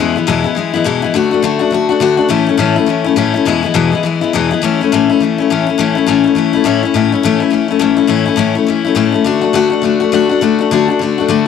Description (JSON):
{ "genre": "rock", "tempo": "207 BPM", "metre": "4/4", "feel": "swing 61% on 8ths", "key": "A major", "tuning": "A4 = 441 Hz", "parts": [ { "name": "picked steel-string acoustic guitar", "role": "solo", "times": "0.0-11.5 s", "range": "E2 to F#4", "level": "-11 LUFS", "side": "left 7 dB", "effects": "none" } ], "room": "light reverb, studio reverb", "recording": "none", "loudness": "-11 LUFS", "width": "side -6 dB against mid", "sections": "0.0-4.6 A section; 4.6-11.5 B section", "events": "none", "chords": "0.0 E; 1.1 D; 2.3 A; 3.5 E; 4.6 A; 9.3 D" }